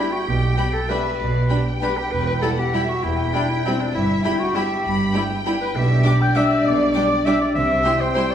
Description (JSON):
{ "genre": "classical, orchestral ballroom waltz", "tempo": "198 BPM", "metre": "3/4", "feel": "uneven beats, rubato", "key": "unclear", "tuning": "A4 = 438 Hz", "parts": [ { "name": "warm symphonic violin section", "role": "melody", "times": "0.0-8.3 s", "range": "C5 to B5", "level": "-30 LUFS", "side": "left 2 dB", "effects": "none" }, { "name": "clear clarinet", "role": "second line", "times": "0.0-8.3 s", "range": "C4 to G5", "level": "-24 LUFS", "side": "left 1 dB", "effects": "none" }, { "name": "mellow large flute ensemble", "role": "second line", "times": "0.0-8.3 s", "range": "C5 to G6", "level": "-28 LUFS", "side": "left 2 dB", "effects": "none" }, { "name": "warm symphonic violin section", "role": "second line", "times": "0.0-8.2 s", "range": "G5 to D6", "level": "-31 LUFS", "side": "left 2 dB", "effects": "none" }, { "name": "rich symphonic viola section", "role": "accompaniment", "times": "0.0-8.2 s", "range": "G3 to E4", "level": "-27 LUFS", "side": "right 2 dB", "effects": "none" }, { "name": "dark French horn section", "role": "sustained chords", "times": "0.0-8.3 s", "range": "G3 to G4", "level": "-26 LUFS", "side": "left 2 dB", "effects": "none" }, { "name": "rich chamber double bass section", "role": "bass", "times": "0.3-7.8 s", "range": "E1 to C2", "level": "-25 LUFS", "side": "right 2 dB", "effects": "none" }, { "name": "rich symphonic cello section", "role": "bass", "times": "0.3-7.8 s", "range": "E2 to C3", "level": "-26 LUFS", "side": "right 2 dB", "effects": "none" }, { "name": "timpani", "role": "percussion", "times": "3.9-4.4, 7.5-8.0 s", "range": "G2 to C3", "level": "-35 LUFS", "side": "equal", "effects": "none" } ], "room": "wet recital hall reverb, RT60 1.5 s", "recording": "heard from further back in the room", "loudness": "-17 LUFS", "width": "side -9 dB against mid", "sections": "0.0-8.3 A section", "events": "none", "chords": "0.3 G/B; 2.1 Em; 3.9 Em/G; 5.8 G/B; 7.6 C" }